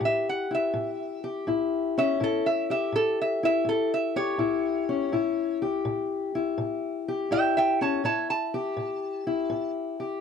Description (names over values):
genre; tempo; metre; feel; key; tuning
acoustic country blues, solo or duo; 82 BPM; 4/4; swing 68% on 8ths; A mixolydian; A4 = 440 Hz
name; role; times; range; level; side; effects
lap resonator guitar; melody; 0.0-9.7 s; A4 to A5; -26 LUFS; right 3 dB; none
fingerpicked steel-string acoustic guitar; accompaniment; 0.0-10.2 s; A2 to G4; -27 LUFS; left 5 dB; none
room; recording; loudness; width
little or no reverb; dry, close 1970s-style studio recording; -24 LUFS; side -7 dB against mid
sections
0.0-10.2 A section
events
resonator guitar played with a steel bar solo 0.0-10.2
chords
0.0 A7